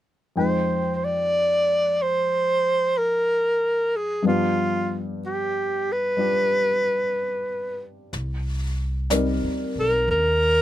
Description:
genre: jazz ballad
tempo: 62 BPM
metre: 4/4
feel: swing 68% on 8ths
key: C minor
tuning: A4 = 441 Hz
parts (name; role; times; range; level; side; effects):
- breathy alto saxophone; melody; 0.4-10.6 s; F4 to D5; -21 LUFS; equal; none
- warm baby grand piano; accompaniment; 0.4-10.6 s; F2 to G5; -27 LUFS; left 2 dB; none
- upright bass; bass; 8.1-10.6 s; B1 to Eb2; -26 LUFS; equal; none
- jazz brush drum kit; drums; 8.1-10.6 s; brushed snare drum, hi-hat, snare drum; -34 LUFS; left 4 dB; none
room: light reverb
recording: minimal, uncompressed stereo recording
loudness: -20 LUFS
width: side -13 dB against mid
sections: 0.4-8.1 A section; 8.1-10.6 B section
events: none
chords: 0.4 Fm9; 4.2 G7; 8.1 Cm9

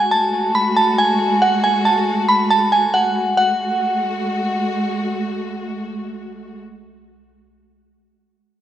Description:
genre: hip hop, drill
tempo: 138 BPM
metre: 4/4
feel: half-time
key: F# minor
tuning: A4 = 442 Hz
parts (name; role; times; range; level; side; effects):
- glassy synth bell; melody; 0.0-4.6 s; F#5 to B5; -16 LUFS; right 1 dB; chorus, low-pass filter, analog delay
- dark symphonic string section; sustained chords; 0.0-6.6 s; G#3 to F#4; -22 LUFS; equal; none
room: light reverb, studio reverb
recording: dry, gritty hardware recording, transformer saturation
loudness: -15 LUFS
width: side -11 dB against mid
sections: 0.0-3.4 A section; 3.4-6.9 B section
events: none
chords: 0.0 F#madd9

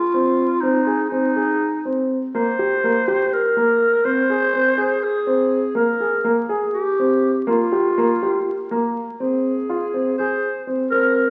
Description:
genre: contemporary instrumental, contemporary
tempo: 245 BPM (eighths)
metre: 7/8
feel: straight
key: unclear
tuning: A4 = 440 Hz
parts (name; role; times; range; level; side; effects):
- growling clarinet; melody; 0.0-11.3 s; Eb4 to C5; -22 LUFS; equal; none
- dark grand piano; arpeggios; 0.1-11.2 s; Bb3 to Ab4; -22 LUFS; equal; none
room: wet recital hall reverb, RT60 1.4 s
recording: very old 78 rpm record, vinyl crackle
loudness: -20 LUFS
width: mono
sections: 0.0-9.2 A section; 9.2-11.3 B section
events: none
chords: 0.0 N.C.; 0.6 Ab; 2.3 Gm; 4.1 Ab; 5.8 Abmaj9/Bb; 7.5 Gm7; 9.2 Fm (rootless)

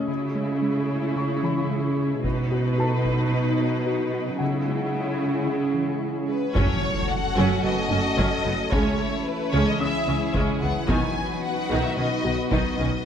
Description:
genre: cinematic, hybrid orchestral and electronic film score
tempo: 111 BPM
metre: 4/4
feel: straight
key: F# dorian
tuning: A4 = 445 Hz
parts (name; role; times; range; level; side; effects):
- rich symphonic viola section; accompaniment; 0.0-12.9 s; D#3 to B4; -29 LUFS; right 1 dB; none
- glassy FM pad; sustained chords; 0.0-13.1 s; E3 to D#5; -30 LUFS; left 1 dB; ensemble chorus, built-in reverb
- rich symphonic cello section; bass; 0.0-12.9 s; F#2 to C#3; -27 LUFS; right 2 dB; none
- warm grand piano; texture; 0.0-13.1 s; A4 to D#6; -37 LUFS; left 2 dB; digital delay
- harp-like synth pluck; arpeggios; 0.1-12.9 s; C#3 to B4; -32 LUFS; left 1 dB; chorus, digital delay
- solo taiko drums; drums; 2.2-3.3, 6.6-13.0 s; none; -29 LUFS; equal; none
- warm symphonic violin section; melody; 6.3-13.0 s; B4 to G#5; -28 LUFS; left 3 dB; none
- warm symphonic violin section; second line; 6.6-13.1 s; E4 to B4; -32 LUFS; left 2 dB; none
- rich studio double bass section; bass; 6.6-12.9 s; F#1 to C#2; -29 LUFS; right 2 dB; none
- impact; sound effects; 6.6-8.7 s; none; -32 LUFS; equal; none
room: moderate scoring stage reverb, RT60 1.9 s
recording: none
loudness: -21 LUFS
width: side -8 dB against mid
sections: 0.0-6.6 A section; 6.6-13.1 B section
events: impact 6.6-8.7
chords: 0.1 C#m; 2.2 B; 4.4 C#m; 6.6 F#m; 8.7 C#m; 10.9 B

